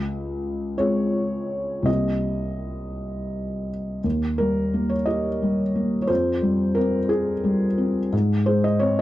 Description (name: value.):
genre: neoclassical minimalist piano.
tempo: 54-60 BPM (dotted quarters).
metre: 6/8.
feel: rubato.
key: unclear.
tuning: A4 = 441 Hz.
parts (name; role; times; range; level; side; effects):
felt-muted upright piano; solo; 0.0-9.0 s; C2 to Eb5; -21 LUFS; equal; none.
room: studio ambience.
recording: dry, close 1970s-style studio recording.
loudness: -21 LUFS.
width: side -15 dB against mid.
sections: 0.0-4.0 A section; 4.0-9.0 B section.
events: none.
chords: 0.0 Dbmaj7; 1.9 Cm7; 4.0 Eb; 6.1 Fmadd9; 8.1 Ab.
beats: 0.79 | 1.87 2.96 | 4.04 5.08 | 6.10 7.11 | 8.13.